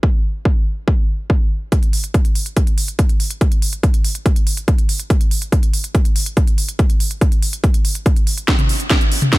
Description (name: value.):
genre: techno.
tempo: 142 BPM.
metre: 4/4.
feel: straight.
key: none.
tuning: none.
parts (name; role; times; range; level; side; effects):
electronic kick drum; drums; 0.0-9.4 s; none; -15 LUFS; equal; none.
techno drum kit; drums; 1.7-9.4 s; hi-hat, snare drum, toms; -21 LUFS; right 1 dB; sidechain pumping on hats, sidechain pumping on toms.
room: digital ambience.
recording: none.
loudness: -14 LUFS.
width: side -20 dB against mid.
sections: 0.0-1.7 A section; 1.7-9.4 B section.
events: build-up 1.7-9.4; drum fill 8.5-9.4.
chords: none.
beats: | 0.03 0.45 0.88 1.30 | 1.72 2.14 2.57 2.99 | 3.41 3.83 4.26 4.68 | 5.10 5.52 5.95 6.37 | 6.79 7.21 7.64 8.06 | 8.48 8.90 9.33.